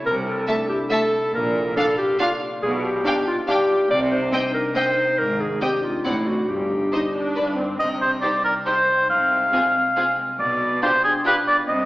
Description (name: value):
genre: cinematic, playful, whimsical film cue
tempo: 140 BPM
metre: 3/4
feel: straight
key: C minor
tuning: A4 = 439 Hz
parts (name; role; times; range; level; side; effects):
- concert harp; arpeggios; 0.0-11.9 s; G2 to D5; -31 LUFS; left 2 dB; none
- rich studio cello section; bass; 0.0-11.9 s; G2 to C3; -30 LUFS; right 1 dB; none
- rich studio double bass section; bass; 0.0-11.9 s; G1 to C2; -35 LUFS; right 1 dB; none
- clear clarinet; second line; 0.1-7.4 s; E4 to D5; -22 LUFS; equal; none
- rich studio violin section; melody; 0.5-11.3 s; G4 to A5; -31 LUFS; equal; none
- rich studio violin section; second line; 0.5-11.3 s; F4 to F5; -30 LUFS; equal; none
- rich studio viola section; accompaniment; 0.5-11.3 s; A3 to Eb4; -29 LUFS; right 1 dB; none
- warm oboe; second line; 7.8-11.9 s; Ab4 to F5; -18 LUFS; equal; none
- triangle; percussion; 7.8-8.6 s; none; -43 LUFS; equal; none
room: wet recital hall reverb, RT60 1.7 s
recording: recorded in a church or concert hall, AM radio sound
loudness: -18 LUFS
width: side -18 dB against mid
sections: 0.0-7.8 A section; 7.8-11.9 B section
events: none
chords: 0.0 Am/C; 1.3 Bb; 2.6 G7/B; 3.9 Cm; 5.2 Abmaj7; 6.1 D7/A; 6.5 Cm/G; 7.4 G5; 7.8 Cm; 9.1 Fm/C; 10.4 G7/B